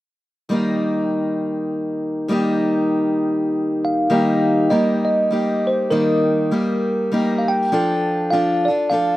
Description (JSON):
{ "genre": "folk", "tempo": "100 BPM", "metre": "3/4", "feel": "swing 60% on 8ths", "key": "unclear", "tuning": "A4 = 440 Hz", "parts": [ { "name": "picked steel-string acoustic guitar", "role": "accompaniment", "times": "0.5-9.2 s", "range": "Eb3 to A4", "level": "-18 LUFS", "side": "equal", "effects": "none" }, { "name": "bell-like tine electric piano", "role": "melody", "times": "3.8-9.2 s", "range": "Bb4 to G5", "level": "-20 LUFS", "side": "right 1 dB", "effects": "slapback echo" } ], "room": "little or no reverb", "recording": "recorded outdoors, with no room sound", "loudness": "-17 LUFS", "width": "side -16 dB against mid", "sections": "0.5-4.1 A section; 4.1-9.2 B section", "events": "none", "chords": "0.5 Eb; 7.7 Dm/F" }